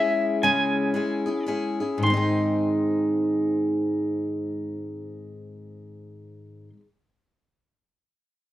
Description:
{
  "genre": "folk",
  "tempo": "104-123 BPM",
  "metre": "3/4",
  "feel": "swing 60% on 8ths",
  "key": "Ab major",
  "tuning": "A4 = 441 Hz",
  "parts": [
    { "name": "clean electric guitar", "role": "melody", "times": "0.0-6.7 s", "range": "Fb5 to C6", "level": "-24 LUFS", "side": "left 1 dB", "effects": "harmonic tremolo, plate reverb" },
    { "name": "picked steel-string acoustic guitar", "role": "accompaniment", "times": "0.0-6.9 s", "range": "Ab2 to Ab4", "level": "-24 LUFS", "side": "equal", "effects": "none" }
  ],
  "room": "moderate small room reverb, RT60 0.5 s",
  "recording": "dark, warm production",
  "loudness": "-22 LUFS",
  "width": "side -14 dB against mid",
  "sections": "0.0-2.0 A section; 2.0-5.5 B section",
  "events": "slowing down 0.0-2.0",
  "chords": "0.0 Dbm; 2.0 Ab"
}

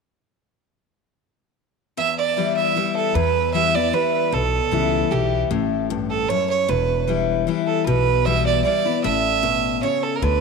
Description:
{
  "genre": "bluegrass",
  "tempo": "153 BPM",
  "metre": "3/4",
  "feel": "straight",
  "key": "E dorian",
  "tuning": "A4 = 440 Hz",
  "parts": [
    { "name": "clear fiddle", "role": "melody", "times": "2.0-10.4 s", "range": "G4 to E5", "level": "-21 LUFS", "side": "right 9 dB", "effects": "none" },
    { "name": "picked steel-string acoustic guitar", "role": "accompaniment", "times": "2.0-10.4 s", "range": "E2 to E4", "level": "-23 LUFS", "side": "left 13 dB", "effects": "none" },
    { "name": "upright bass", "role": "bass", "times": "3.1-10.4 s", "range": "E1 to E2", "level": "-24 LUFS", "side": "left 1 dB", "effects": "none" }
  ],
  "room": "moderate plate reverb, RT60 2.8 s",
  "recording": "1960s-style stereo with parts hard left and right",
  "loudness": "-18 LUFS",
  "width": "side -4 dB against mid",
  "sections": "2.0-3.2 A section; 3.2-10.4 B section",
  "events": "none",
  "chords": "2.0 Em; 5.5 A7; 6.7 Em; 9.0 A"
}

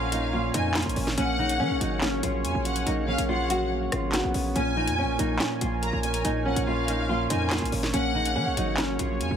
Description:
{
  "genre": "hip hop, drill",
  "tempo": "142 BPM",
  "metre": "4/4",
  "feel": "half-time",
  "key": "Bb minor",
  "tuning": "A4 = 438 Hz",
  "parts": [
    { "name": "nylon-string guitar", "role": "melody", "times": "0.0-9.4 s", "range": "C#4 to F#4", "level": "-30 LUFS", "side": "left 1 dB", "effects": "low-pass filter, tape echo" },
    { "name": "warm studio violin section", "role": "second line", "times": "0.0-9.4 s", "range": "F5 to Bb5", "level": "-31 LUFS", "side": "left 1 dB", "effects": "tape echo" },
    { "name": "dark baby grand piano", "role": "accompaniment", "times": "0.0-9.4 s", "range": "Bb2 to Db4", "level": "-30 LUFS", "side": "right 3 dB", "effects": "low-pass filter, tape echo" },
    { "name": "warm analog pad", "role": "sustained chords", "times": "0.0-9.4 s", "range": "Db4 to Ab5", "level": "-36 LUFS", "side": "left 2 dB", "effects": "chorus" },
    { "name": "hard-hitting 808-style bass", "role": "bass", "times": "0.0-9.4 s", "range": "Ab1 to F3", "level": "-30 LUFS", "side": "equal", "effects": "none" },
    { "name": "drill drum kit", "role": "drums", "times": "0.1-9.3 s", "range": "handclaps, hi-hat, rim click, snare drum", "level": "-29 LUFS", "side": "left 1 dB", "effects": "none" }
  ],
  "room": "light reverb",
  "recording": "echo-heavy mix",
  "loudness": "-23 LUFS",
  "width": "side -8 dB against mid",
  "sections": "0.0-9.4 A section",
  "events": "none",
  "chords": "0.0 Bbm7; 1.2 Bsus2; 4.6 Bbm7; 7.9 Bsus2 (rootless)"
}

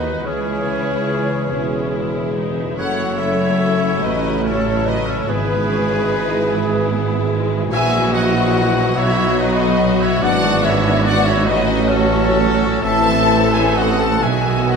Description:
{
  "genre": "classical",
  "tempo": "42-50 BPM (dotted quarters)",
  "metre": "6/8",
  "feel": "rubato",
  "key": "E major",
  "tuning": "A4 = 442 Hz",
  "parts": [
    { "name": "rich studio violin section", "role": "melody", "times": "0.0-14.8 s", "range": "E4 to A4", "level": "-27 LUFS", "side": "left 4 dB", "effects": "none" },
    { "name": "clear clarinet", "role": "second line", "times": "0.0-14.8 s", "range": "B3 to B4", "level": "-30 LUFS", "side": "left 1 dB", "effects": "none" },
    { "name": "mellow cor anglais", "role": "second line", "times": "0.0-14.8 s", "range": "B3 to A4", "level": "-28 LUFS", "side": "right 1 dB", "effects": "none" },
    { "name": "mellow hollow concert flute", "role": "second line", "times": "0.0-14.8 s", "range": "B4 to A5", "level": "-26 LUFS", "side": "left 1 dB", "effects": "none" },
    { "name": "rich studio violin section", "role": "second line", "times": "0.0-14.8 s", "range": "B4 to A5", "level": "-24 LUFS", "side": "left 4 dB", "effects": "none" },
    { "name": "clear studio viola section", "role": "accompaniment", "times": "0.0-14.8 s", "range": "D#3 to E4", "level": "-26 LUFS", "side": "equal", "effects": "none" },
    { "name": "mellow bassoon", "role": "accompaniment", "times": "0.0-14.8 s", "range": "B2 to F#3", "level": "-27 LUFS", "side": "left 2 dB", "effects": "none" },
    { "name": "mellow French horn section", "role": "sustained chords", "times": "0.0-14.8 s", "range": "D#3 to B4", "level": "-27 LUFS", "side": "left 4 dB", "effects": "none" },
    { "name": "concert harp", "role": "arpeggios", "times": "0.0-14.8 s", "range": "F#2 to E5", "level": "-27 LUFS", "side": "left 9 dB", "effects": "none" },
    { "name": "clear trumpet section", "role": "stabs", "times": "0.0-14.8 s", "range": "G#4 to F#5", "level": "-24 LUFS", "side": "equal", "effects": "none" },
    { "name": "clear studio double bass section", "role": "bass", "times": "0.0-14.8 s", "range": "E1 to D#2", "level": "-24 LUFS", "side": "right 4 dB", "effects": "none" },
    { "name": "warm chamber cello section", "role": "bass", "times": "0.0-14.8 s", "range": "C#2 to B2", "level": "-24 LUFS", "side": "right 5 dB", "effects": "none" },
    { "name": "warm tuba", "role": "bass", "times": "0.0-14.8 s", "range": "E1 to D#2", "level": "-24 LUFS", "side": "right 4 dB", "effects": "none" }
  ],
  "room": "moderate scoring stage reverb, RT60 2.1 s",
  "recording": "none",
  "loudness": "-15 LUFS",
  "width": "side -5 dB against mid",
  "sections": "0.0-14.8 A section",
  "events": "none",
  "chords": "0.2 C#m; 2.8 F#m7; 5.3 E/G#; 7.7 F#7/A#; 9.0 B; 10.2 E7/G#; 11.5 A6; 12.8 Am; 14.2 B"
}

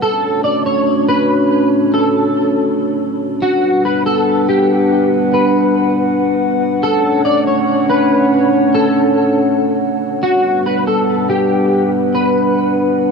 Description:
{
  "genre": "hip hop",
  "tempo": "141 BPM",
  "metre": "4/4",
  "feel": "half-time",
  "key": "unclear",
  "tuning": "A4 = 440 Hz",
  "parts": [
    { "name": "electric guitar at the edge of break-up", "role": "melody", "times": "0.0-13.1 s", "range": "F#4 to D5", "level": "-16 LUFS", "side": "equal", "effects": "ensemble chorus, digital delay" },
    { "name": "dark analog pad", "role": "sustained chords", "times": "0.0-13.1 s", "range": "G3 to F#5", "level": "-14 LUFS", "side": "equal", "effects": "wide subtle chorus" }
  ],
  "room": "moderate huge ambient reverb, RT60 6.4 s",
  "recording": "none",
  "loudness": "-12 LUFS",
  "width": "side -5 dB against mid",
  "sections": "0.0-3.4 A section; 3.4-13.1 B section",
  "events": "none",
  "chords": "0.0 Dmaj7; 3.4 Gmaj7; 6.8 Dmaj7; 10.2 Gmaj7"
}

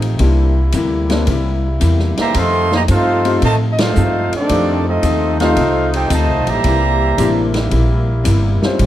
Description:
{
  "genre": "jazz, big band swing",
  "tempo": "112 BPM",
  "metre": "4/4",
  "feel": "swing 68% on 8ths",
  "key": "unclear",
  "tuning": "A4 = 443 Hz",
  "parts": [
    { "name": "archtop guitar, miked and amplified", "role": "accompaniment", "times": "0.0-8.9 s", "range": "A2 to A4", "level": "-23 LUFS", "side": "left 4 dB", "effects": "none" },
    { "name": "warm concert grand piano", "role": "accompaniment", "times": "0.0-8.9 s", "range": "G3 to C5", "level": "-21 LUFS", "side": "left 4 dB", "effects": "none" },
    { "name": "bright trombone section", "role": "sustained chords", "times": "0.0-8.9 s", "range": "C3 to G4", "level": "-25 LUFS", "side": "equal", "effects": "none" },
    { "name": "upright bass", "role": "bass", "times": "0.0-8.9 s", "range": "G1 to A2", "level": "-16 LUFS", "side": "equal", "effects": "none" },
    { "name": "swinging big-band drum kit", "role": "drums", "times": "0.0-8.9 s", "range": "hi-hat, kick drum, ride cymbal, snare drum", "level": "-23 LUFS", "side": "equal", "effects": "none" },
    { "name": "clear trumpet section", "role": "melody", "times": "2.2-7.6 s", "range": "C4 to C6", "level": "-18 LUFS", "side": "right 1 dB", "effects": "none" },
    { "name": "bright trombone section", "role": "second line", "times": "2.2-7.6 s", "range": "C3 to G4", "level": "-20 LUFS", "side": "right 2 dB", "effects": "none" }
  ],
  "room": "light reverb",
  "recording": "dark, warm production",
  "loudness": "-13 LUFS",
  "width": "side -13 dB against mid",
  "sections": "0.0-8.9 A section",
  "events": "band accent 3.7",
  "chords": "0.2 C7; 2.3 F7; 6.6 C7"
}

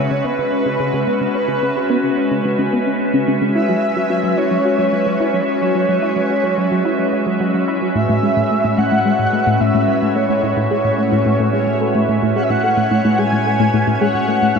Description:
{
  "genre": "ambient, sequencer-driven space music",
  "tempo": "109 BPM",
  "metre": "4/4",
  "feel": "straight",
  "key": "unclear",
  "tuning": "A4 = 441 Hz",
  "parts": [
    { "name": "breathy flute-like synth lead", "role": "melody", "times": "0.0-14.6 s", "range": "B4 to G#5", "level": "-20 LUFS", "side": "equal", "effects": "tremolo, ensemble chorus, ping-pong delay" },
    { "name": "evolving wavetable pad", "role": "sustained chords", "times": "0.0-14.6 s", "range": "A2 to E5", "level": "-19 LUFS", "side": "equal", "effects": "chorus, built-in reverb" },
    { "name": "tight sequenced synth", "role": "riff", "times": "0.0-14.6 s", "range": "A2 to F#4", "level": "-19 LUFS", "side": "left 1 dB", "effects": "chorus, phaser, ping-pong delay" },
    { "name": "bubbling stepped-filter texture", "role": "texture", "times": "8.0-14.6 s", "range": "C#4 to C#5", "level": "-27 LUFS", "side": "left 3 dB", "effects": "chorus, built-in reverb" }
  ],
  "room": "wet huge ambient reverb, RT60 8.8 s",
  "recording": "none",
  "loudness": "-14 LUFS",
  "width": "side -5 dB against mid",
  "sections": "0.0-8.0 A section; 8.0-14.6 B section",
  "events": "filter sweep on synth arpeggio sound 0.0-8.0",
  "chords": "0.0 C#m7; 3.6 F#5; 8.0 A"
}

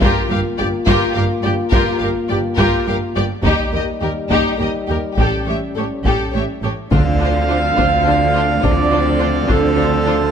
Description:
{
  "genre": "cinematic, epic orchestral film score",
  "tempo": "70 BPM (dotted quarters)",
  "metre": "6/8",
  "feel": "straight",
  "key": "G minor, D minor from 6.9 s",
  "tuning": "A4 = 440 Hz",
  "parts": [
    { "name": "rich symphonic violin section", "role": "melody", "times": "0.0-10.2 s", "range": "G4 to F5", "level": "-26 LUFS", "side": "left 4 dB", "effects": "none" },
    { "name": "warm symphonic violin section", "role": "second line", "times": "0.0-10.1 s", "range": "Eb4 to C#5", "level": "-24 LUFS", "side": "left 3 dB", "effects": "none" },
    { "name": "clear symphonic viola section", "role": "accompaniment", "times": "0.0-10.1 s", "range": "D4 to G4", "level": "-24 LUFS", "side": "right 1 dB", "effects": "none" },
    { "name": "dark French horn section", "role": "sustained chords", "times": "0.0-10.3 s", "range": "F3 to F4", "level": "-24 LUFS", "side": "left 4 dB", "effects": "none" },
    { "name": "rich studio cello section", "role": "bass", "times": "0.0-10.3 s", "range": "Eb2 to D3", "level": "-22 LUFS", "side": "right 2 dB", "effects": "none" },
    { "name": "rich symphonic double bass section", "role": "bass", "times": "0.0-10.3 s", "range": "G1 to Eb2", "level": "-22 LUFS", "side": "right 3 dB", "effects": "none" },
    { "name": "taiko ensemble", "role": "drums", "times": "0.0-10.0 s", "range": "none", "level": "-20 LUFS", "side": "equal", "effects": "none" },
    { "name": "timpani", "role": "percussion", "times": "0.0-0.8, 6.9-7.7 s", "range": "G2 to D3", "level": "-23 LUFS", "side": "right 1 dB", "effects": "none" },
    { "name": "pipe organ, full organ", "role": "sustained chords", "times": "6.9-10.3 s", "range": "C4 to F5", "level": "-25 LUFS", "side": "left 1 dB", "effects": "none" },
    { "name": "mellow trumpet section", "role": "stabs", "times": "6.9-10.3 s", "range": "A4 to F5", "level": "-18 LUFS", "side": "right 2 dB", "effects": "none" }
  ],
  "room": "moderate scoring stage reverb, RT60 1.7 s",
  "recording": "close, detailed microphones",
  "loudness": "-14 LUFS",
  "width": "side -8 dB against mid",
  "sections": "0.0-6.9 A section; 6.9-10.3 B section",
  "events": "none",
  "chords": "0.0 Gm7; 3.4 Eb; 5.2 A7; 6.9 Dm7"
}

